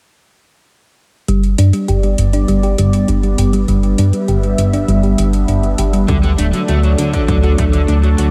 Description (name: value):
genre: synthwave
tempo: 100 BPM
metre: 4/4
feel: straight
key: G major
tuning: A4 = 440 Hz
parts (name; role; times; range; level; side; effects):
- phased analog pad; sustained chords; 1.8-8.3 s; F#3 to E5; -21 LUFS; equal; phaser, chorus, sidechain pumping
- thumb-piano-like synth pluck; arpeggios; 1.3-8.3 s; F#3 to G4; -22 LUFS; equal; chorus, tape echo
- chorused synth bass; bass; 1.3-8.3 s; D1 to G2; -16 LUFS; equal; tube saturation, sidechain pumping
- electronic hi-hat; drums; 1.3-8.3 s; none; -31 LUFS; equal; overdrive
- crunchy overdriven guitar; riff; 6.1-8.3 s; D3 to D4; -26 LUFS; equal; subtle chorus, vintage 12-bit sampler grit, tape echo
- electronic kick drum; drums; 6.1-7.7 s; none; -20 LUFS; equal; overdrive
room: moderate huge ambient reverb, RT60 8.0 s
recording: dreamy mix soaked in reverb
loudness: -14 LUFS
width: mono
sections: 1.3-8.3 A section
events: filter sweep on analog synth bass 1.3-8.3; filter sweep on analog synth pad 1.3-8.3; filter sweep on synth arpeggio sound 1.3-8.3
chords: 1.3 G; 6.1 D